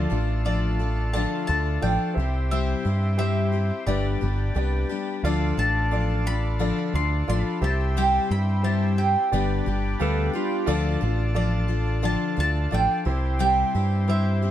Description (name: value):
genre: rock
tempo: 88 BPM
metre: 4/4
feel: straight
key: D dorian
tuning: A4 = 439 Hz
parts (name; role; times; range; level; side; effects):
- picked steel-string acoustic guitar; accompaniment; 0.0-14.5 s; G2 to A4; -29 LUFS; left 7 dB; none
- warm grand piano; accompaniment; 0.0-14.5 s; E4 to F5; -33 LUFS; right 2 dB; none
- accordion; sustained chords; 0.0-14.5 s; A3 to E5; -34 LUFS; equal; none
- deep dub picked electric bass; bass; 0.0-14.5 s; G1 to G2; -24 LUFS; equal; none
- mandolin; melody; 0.5-14.5 s; D5 to C6; -28 LUFS; right 2 dB; tape echo
- pedal steel guitar; second line; 10.0-10.7 s; F4 to A4; -30 LUFS; right 6 dB; none
room: light reverb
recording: dark, warm production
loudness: -21 LUFS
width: side -11 dB against mid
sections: 0.0-14.5 A section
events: none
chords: 0.0 Dm; 2.2 C; 3.9 G; 5.2 Dm; 7.6 C; 9.3 G; 10.7 Dm; 13.1 C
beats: 0.46 1.14 1.83 | 2.51 3.19 3.87 4.56 | 5.24 5.92 6.60 7.28 | 7.96 8.64 9.32 10.00 | 10.68 11.36 12.04 12.72 | 13.40 14.09